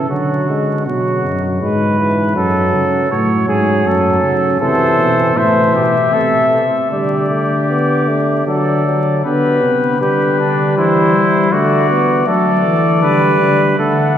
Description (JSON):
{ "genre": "classical, imitative canzona for brass ensemble", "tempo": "79 BPM", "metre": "3/4", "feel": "straight", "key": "G major from 4.6 s", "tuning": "A4 = 439 Hz", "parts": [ { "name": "warm trumpet", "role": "melody", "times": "0.0-0.1, 4.6-14.2 s", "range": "B4 to F#5", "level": "-18 LUFS", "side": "left 5 dB", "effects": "none" }, { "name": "clear flugelhorn", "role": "second line", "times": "0.0-14.2 s", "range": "D4 to C#5", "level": "-18 LUFS", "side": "right 2 dB", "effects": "none" }, { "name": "clear euphonium", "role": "accompaniment", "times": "0.0-14.2 s", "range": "E3 to B3", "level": "-17 LUFS", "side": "equal", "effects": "none" }, { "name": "warm tuba", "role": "bass", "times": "0.0-14.2 s", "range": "F#2 to G3", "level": "-17 LUFS", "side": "equal", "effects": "none" } ], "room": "wet cathedral reverb, RT60 4.2 s", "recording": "heard from further back in the room, vinyl crackle", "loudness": "-12 LUFS", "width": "side -10 dB against mid", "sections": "0.1-9.3 A section; 9.3-14.2 B section", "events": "none", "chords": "0.1 Bm/D; 1.6 E/G#; 2.4 F#m; 4.6 Am; 6.9 Dsus4; 8.5 D; 9.3 G; 10.8 C/E; 11.5 D; 13.0 G/D" }